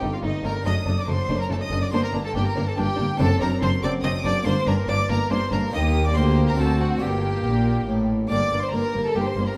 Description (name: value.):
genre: classical, baroque-style concerto movement with solo episodes.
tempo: 142 BPM.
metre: 3/4.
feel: straight.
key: G minor.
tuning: A4 = 440 Hz.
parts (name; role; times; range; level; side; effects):
rich chamber violin section; melody; 0.0-9.6 s; Eb5 to Eb6; -34 LUFS; equal; none.
rich violin; melody; 0.0-9.6 s; Eb4 to Eb5; -32 LUFS; equal; none.
warm symphonic violin section; second line; 0.0-9.6 s; D4 to D5; -33 LUFS; equal; none.
harpsichord; accompaniment; 0.0-9.6 s; D2 to Bb4; -33 LUFS; equal; none.
rich chamber viola section; accompaniment; 0.0-9.4 s; A3 to C4; -32 LUFS; equal; none.
rich chamber cello section; bass; 0.0-9.4 s; D2 to Bb2; -29 LUFS; equal; none.
warm chamber double bass section; bass; 0.0-9.4 s; F#1 to Eb2; -28 LUFS; equal; none.
room: wet recital hall reverb, RT60 1.5 s.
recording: none.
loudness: -23 LUFS.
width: mono.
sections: 0.0-8.3 A section; 8.3-9.6 A section.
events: none.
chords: 0.0 Am7b5/G; 0.7 D/F#; 1.9 Gm; 3.2 D7/F#; 4.5 Gm; 5.7 Eb; 6.2 Gm/D; 6.6 D7; 7.0 Gm.